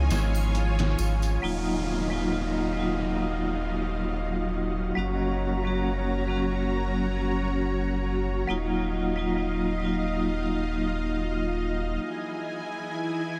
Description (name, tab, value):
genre	trip hop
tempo	68 BPM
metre	4/4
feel	swing 55% on 16ths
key	Eb minor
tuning	A4 = 441 Hz
part	string machine, cellos	sustained chords	0.0-13.4 s	E4 to Bb5	-35 LUFS	equal	ensemble chorus
part	warm sub bass	bass	0.0-12.0 s	Eb1 to Db2	-32 LUFS	equal	none
part	trip hop sampler-style drum kit	drums	0.1-1.4 s	hi-hat, snare drum	-37 LUFS	equal	none
part	tambourine and triangle	percussion	0.1-1.4 s	none	-47 LUFS	equal	none
part	vibraphone with hard mallets	accompaniment	1.4-12.0 s	Gb3 to Gb4	-31 LUFS	equal	tremolo, tape echo
part	downlifter	sound effects	1.4-8.5 s	none	-41 LUFS	equal	none
part	flickering grainy texture	texture	2.8-12.0 s	Gb3 to Gb4	-42 LUFS	equal	none
room	moderate huge ambient reverb, RT60 6.5 s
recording	dreamy mix soaked in reverb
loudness	-28 LUFS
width	mono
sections	0.0-1.4 A section; 1.4-13.4 B section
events	break 0.0-1.4, 12.0-13.4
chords	0.0 Db; 1.4 Ebmadd9; 5.0 Gb; 8.5 Ebmadd9; 12.0 Emaj7